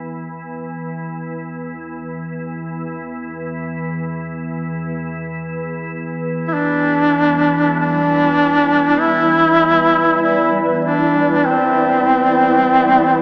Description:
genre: dark ambient drone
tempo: free time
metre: none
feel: none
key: E minor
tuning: A4 = 438 Hz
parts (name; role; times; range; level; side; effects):
- organ-like drone; drone; 0.0-13.2 s; E2 to E3; -22 LUFS; equal; ensemble chorus, built-in reverb
- warm duduk; melody; 6.5-13.2 s; C4 to E4; -13 LUFS; equal; analog delay
- granular cloud pad; sustained chords; 8.0-13.2 s; G3 to D5; -20 LUFS; equal; built-in reverb
room: wet spring reverb, RT60 2.3 s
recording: echo-heavy mix, small speaker sound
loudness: -13 LUFS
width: side -33 dB against mid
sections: 0.0-13.2 A section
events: none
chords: 0.0 Em7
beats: free time

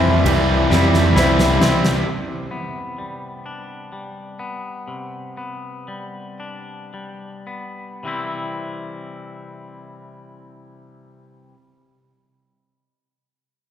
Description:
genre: post-rock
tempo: 35-44 BPM (dotted quarters)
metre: 6/8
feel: straight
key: C major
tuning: A4 = 440 Hz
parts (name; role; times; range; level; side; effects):
- felt-muted upright piano; arpeggios; 0.0-2.1 s; C5 to E5; -30 LUFS; equal; none
- twangy electric guitar; arpeggios; 0.0-11.6 s; C3 to E4; -28 LUFS; left 3 dB; none
- cranked stack guitar; riff; 0.0-2.1 s; C3 to E4; -21 LUFS; right 3 dB; overdrive
- overdriven semi-hollow guitar; riff; 0.0-2.1 s; C3 to E4; -22 LUFS; left 5 dB; none
- modern bright picked electric bass; bass; 0.0-2.0 s; C2 to F2; -19 LUFS; right 1 dB; none
- huge arena drum kit; drums; 0.3-2.1 s; ride cymbal, snare drum; -23 LUFS; right 1 dB; none
room: wet church reverb, RT60 2.5 s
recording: recorded in a church or concert hall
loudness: -17 LUFS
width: side -9 dB against mid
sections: 0.0-2.1 A section; 2.1-8.0 B section; 8.0-11.5 C section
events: drum fill 0.7-2.1; slowing down 2.1-8.0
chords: 0.0 C; 2.1 Gadd11/C; 8.0 C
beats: 0.71 | 2.08 3.46 | 4.88 6.40 | 8.04 9.75

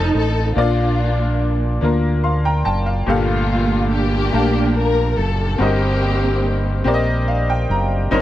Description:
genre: slow gospel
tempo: 48 BPM (dotted quarters)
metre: 6/8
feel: straight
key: unclear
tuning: A4 = 443 Hz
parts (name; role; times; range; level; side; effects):
- warm studio string section; melody; 0.0-6.9 s; A3 to Bb4; -21 LUFS; equal; tape echo
- bright upright piano; accompaniment; 0.0-8.2 s; G2 to C6; -20 LUFS; left 2 dB; none
- fingered electric bass; bass; 0.0-8.2 s; F1 to D2; -19 LUFS; equal; none
room: little or no reverb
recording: dry, close 1970s-style studio recording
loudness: -16 LUFS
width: side -13 dB against mid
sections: 0.0-3.1 A section; 3.1-8.2 B section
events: upright piano fill 1.8-3.1, 6.9-8.1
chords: 0.0 F7; 0.6 Bb; 3.1 Gm9; 5.6 Eb6/G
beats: | 0.57 1.82 | 3.08 4.34 | 5.60 6.85 | 8.11

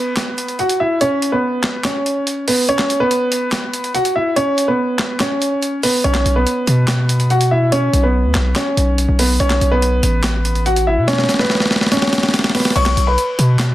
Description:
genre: hip hop, trap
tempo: 143 BPM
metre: 4/4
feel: half-time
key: unclear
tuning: A4 = 442 Hz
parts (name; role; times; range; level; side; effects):
- warm concert grand piano; melody; 0.0-13.7 s; B3 to C#6; -17 LUFS; equal; low-pass filter
- breakbeat sampler-style drum kit; drums; 0.2-13.7 s; crash cymbal, handclaps, hi-hat, snare drum; -19 LUFS; equal; none
- hard-hitting 808-style bass; bass; 6.0-13.7 s; A1 to B2; -15 LUFS; equal; none
room: little or no reverb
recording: dense, heavily limited modern master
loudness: -14 LUFS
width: side -14 dB against mid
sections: 0.0-12.8 A section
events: break 0.0-6.0; drum fill 11.1-12.8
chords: 0.0 Bsus2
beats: 0.17 0.59 | 1.01 1.43 1.85 2.27 | 2.69 3.11 3.53 3.94 | 4.37 4.79 5.20 5.62 | 6.04 6.46 6.88 7.30 | 7.72 8.14 8.56 8.98 | 9.40 9.82 10.24 10.66 | 11.08 11.50 11.92 12.34 | 12.76 13.18 13.60

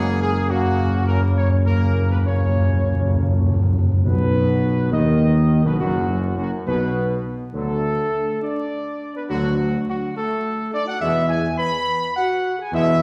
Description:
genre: classical, ceremonial fanfare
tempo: 103 BPM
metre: 3/4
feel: straight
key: unclear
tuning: A4 = 440 Hz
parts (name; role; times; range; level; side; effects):
- mellow trumpet section; melody; 0.0-13.0 s; F#4 to B5; -27 LUFS; equal; none
- bright trombone section; sustained chords; 0.0-12.9 s; F#2 to A#3; -32 LUFS; equal; none
- dark French horn section; sustained chords; 0.0-13.0 s; F#3 to B4; -32 LUFS; equal; none
- dark tuba; bass; 0.0-13.0 s; F#1 to E2; -24 LUFS; equal; none
- timpani; percussion; 0.5-4.9 s; F#2 to B2; -22 LUFS; equal; none
room: wet concert hall reverb, RT60 1.6 s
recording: heard from further back in the room, vinyl crackle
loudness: -20 LUFS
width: mono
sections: 0.0-4.1 A section; 4.1-13.0 B section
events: timpani fill 0.5-4.1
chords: 0.0 F#; 4.1 B; 7.5 D; 11.0 E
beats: | 0.50 1.07 1.65 | 2.25 2.85 3.45 | 4.05 4.64 5.22 | 5.80 6.38 6.96 | 7.54 8.13 8.72 | 9.30 9.88 10.45 | 11.01 11.58 12.15 | 12.73

